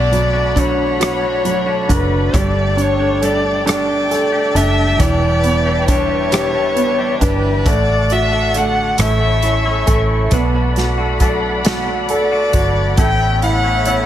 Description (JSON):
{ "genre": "six-eight pop ballad", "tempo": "45 BPM (dotted quarters)", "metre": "6/8", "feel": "straight", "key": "unclear", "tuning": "A4 = 435 Hz", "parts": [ { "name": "warm violin", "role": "melody", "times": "0.0-14.1 s", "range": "B4 to G5", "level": "-18 LUFS", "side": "left 3 dB", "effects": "none" }, { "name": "warm concert grand piano", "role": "accompaniment", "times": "0.0-14.1 s", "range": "B2 to C#5", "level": "-20 LUFS", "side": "right 4 dB", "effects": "none" }, { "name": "muted studio string section", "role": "sustained chords", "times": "0.0-14.1 s", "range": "D4 to C#6", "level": "-24 LUFS", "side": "left 1 dB", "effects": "none" }, { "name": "clean electric guitar", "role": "arpeggios", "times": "0.0-14.1 s", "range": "E2 to G4", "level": "-24 LUFS", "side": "left 2 dB", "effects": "none" }, { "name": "vintage muted fingered electric bass", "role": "bass", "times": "0.0-14.1 s", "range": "E1 to B1", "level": "-19 LUFS", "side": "equal", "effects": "none" }, { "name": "natural country drum kit", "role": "drums", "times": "0.1-14.1 s", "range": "hi-hat, kick drum, rim click, snare drum", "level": "-19 LUFS", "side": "equal", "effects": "none" } ], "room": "light reverb, small room ambience", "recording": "none", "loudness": "-13 LUFS", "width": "side -11 dB against mid", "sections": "0.0-14.1 A section", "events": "none", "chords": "0.0 Bm7; 2.3 Gsus2; 5.0 Em7; 7.7 D/A; 9.0 A; 10.3 Bm7; 13.0 Aadd9", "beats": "1.00 | 2.33 3.67 | 5.00 6.33 | 7.66 8.99 | 10.32 11.65 | 12.98" }